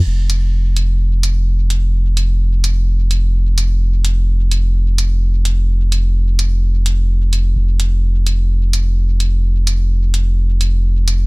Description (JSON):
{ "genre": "dub techno", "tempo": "128 BPM", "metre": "4/4", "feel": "straight", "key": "unclear", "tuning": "A4 = 440 Hz", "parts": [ { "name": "warm sub bass", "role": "bass", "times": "0.1-11.3 s", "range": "F1", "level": "-13 LUFS", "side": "equal", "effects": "tube saturation" }, { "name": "electronic hi-hat", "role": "drums", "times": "0.3-11.2 s", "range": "none", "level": "-23 LUFS", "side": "right 1 dB", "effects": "none" } ], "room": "little or no reverb", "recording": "none", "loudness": "-13 LUFS", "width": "side -29 dB against mid", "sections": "0.1-11.3 A section", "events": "none", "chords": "none" }